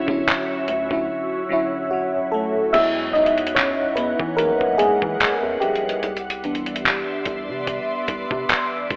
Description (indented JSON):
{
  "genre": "contemporary R&B",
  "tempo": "73 BPM",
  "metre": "4/4",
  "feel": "swing 54% on 16ths",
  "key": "unclear",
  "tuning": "A4 = 439 Hz",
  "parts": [
    { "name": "FM electric piano with soft pad layer", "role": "accompaniment", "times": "0.0-8.9 s", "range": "D3 to E5", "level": "-24 LUFS", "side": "equal", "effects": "chorus, phaser" },
    { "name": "ethereal airy pad", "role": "sustained chords", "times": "0.0-9.0 s", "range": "B3 to E6", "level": "-29 LUFS", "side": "equal", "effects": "ensemble chorus, built-in reverb, phaser" },
    { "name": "rubbery square bass", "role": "bass", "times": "0.1-9.0 s", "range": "F1 to E3", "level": "-34 LUFS", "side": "equal", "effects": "none" },
    { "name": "dusty soul sampler-style drum kit", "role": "drums", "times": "0.1-9.0 s", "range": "crash cymbal, handclaps, hi-hat, kick drum", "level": "-26 LUFS", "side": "equal", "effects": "none" }
  ],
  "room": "moderate lush hall reverb, RT60 2.3 s",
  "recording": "telephone sound",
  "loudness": "-22 LUFS",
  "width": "mono",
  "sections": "0.0-2.7 A section; 2.7-9.0 B section",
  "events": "drums muted 1.1-2.7; FM electric piano solo 2.7-9.0",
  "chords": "0.0 Dmaj9; 2.7 Emaj9; 6.0 Cmaj9"
}